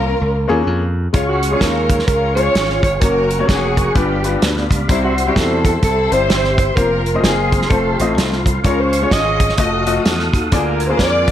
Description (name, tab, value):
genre	uptempo gospel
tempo	128 BPM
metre	4/4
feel	swing 61% on 8ths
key	Bb minor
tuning	A4 = 441 Hz
part	breathy alto saxophone	melody	0.0-11.3 s	E4 to Eb5	-21 LUFS	right 5 dB	none
part	dark studio string section	melody	0.0-11.3 s	G3 to Eb5	-21 LUFS	left 4 dB	slapback echo
part	clear grand piano	accompaniment	0.0-11.3 s	G2 to Eb5	-21 LUFS	left 4 dB	none
part	slap bass	bass	0.0-11.3 s	F1 to F2	-20 LUFS	equal	none
part	tonewheel organ	sustained chords	1.1-11.3 s	G3 to Eb6	-24 LUFS	right 2 dB	slow rotary speaker, chorus vibrato
part	warm soul drum kit	drums	1.1-11.3 s	hi-hat, kick drum, snare drum	-18 LUFS	right 1 dB	none
room	small room ambience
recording	none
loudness	-13 LUFS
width	side -11 dB against mid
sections	0.0-11.3 A section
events	none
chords	0.0 Bbm; 1.1 Db; 3.0 Gb; 4.0 G7; 4.9 C; 6.8 Fsus4; 7.7 F; 8.6 Db; 9.6 F7b9; 10.5 Bb7/D